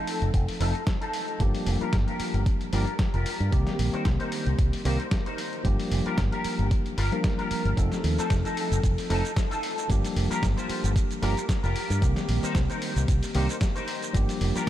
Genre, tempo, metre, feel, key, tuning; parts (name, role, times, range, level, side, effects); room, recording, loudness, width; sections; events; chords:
nu-disco, nu disco; 113 BPM; 4/4; swing 54% on 16ths; G minor; A4 = 439 Hz
tine electric piano; accompaniment; 0.0-14.7 s; Eb3 to Bb4; -31 LUFS; equal; medium stereo tremolo, sidechain pumping, ping-pong delay
electric guitar with an envelope filter; riff; 0.0-14.7 s; Eb4 to C5; -33 LUFS; left 2 dB; ensemble chorus, low-pass filter, ping-pong delay
dusty soul sampler-style drum kit; drums; 0.1-14.7 s; hi-hat, shaker, snare drum; -34 LUFS; equal; overdrive
fingered electric bass with an envelope filter; bass; 0.2-14.6 s; F1 to G2; -26 LUFS; equal; tube saturation
electronic kick drum; drums; 0.3-14.3 s; -26 LUFS; equal; overdrive
light reverb; -24 LUFS; side -12 dB against mid
0.0-14.7 A section
filter sweep on clean electric guitar 0.0-14.7
0.0 F7; 1.4 Gm7; 3.5 Cm7; 5.7 Gm7; 7.8 F7; 9.9 Gm7; 12.0 Cm7; 14.1 Gm7